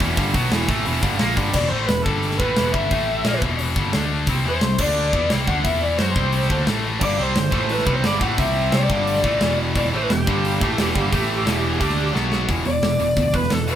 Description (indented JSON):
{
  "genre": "heavy metal",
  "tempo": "176 BPM",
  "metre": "4/4",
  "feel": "straight",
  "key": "E minor",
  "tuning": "A4 = 440 Hz",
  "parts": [
    { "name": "distorted electric guitar", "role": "riff", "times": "0.0-12.5 s", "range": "E2 to F#4", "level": "-27 LUFS", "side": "right 1 dB", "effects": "overdrive" },
    { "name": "scooped high-gain guitar", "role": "riff", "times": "0.0-13.8 s", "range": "E2 to F#4", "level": "-25 LUFS", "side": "left 7 dB", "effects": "distortion" },
    { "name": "tight distorted guitar", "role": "riff", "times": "0.0-1.5, 7.0-13.8 s", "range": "E2 to D4", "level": "-26 LUFS", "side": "right 6 dB", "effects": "distortion" },
    { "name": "overdriven picked electric bass", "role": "bass", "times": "0.0-13.8 s", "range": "E1 to F#2", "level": "-25 LUFS", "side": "equal", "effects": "none" },
    { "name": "tight metal drum kit", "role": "drums", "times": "0.0-13.8 s", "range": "crash cymbal, hi-hat, kick drum, snare drum", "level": "-24 LUFS", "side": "right 1 dB", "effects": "none" },
    { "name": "bluesy overdriven lead guitar", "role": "melody", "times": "1.5-13.8 s", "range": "G4 to F#5", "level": "-23 LUFS", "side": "equal", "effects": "distortion, digital delay" }
  ],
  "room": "light reverb",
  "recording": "band playing live in one room",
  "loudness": "-18 LUFS",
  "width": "side -10 dB against mid",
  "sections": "0.0-1.5 A section; 1.5-12.5 B section; 12.5-13.8 C section",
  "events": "drum fill 12.1-12.5; lead electric guitar solo 12.5-13.8",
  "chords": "0.0 Em; 1.5 E5; 2.1 G5; 2.4 Em; 2.9 A5; 3.3 Em; 3.9 D5; 4.3 C5; 4.8 D5; 5.1 C5; 5.6 E5; 6.0 C5; 6.7 A5; 7.0 G5; 7.5 A5; 7.9 G5; 8.4 C5; 8.7 G5; 9.4 E5; 10.3 G5; 10.6 Em; 11.1 A5; 11.5 Em; 11.8 D5; 12.1 B5; 12.5 E5"
}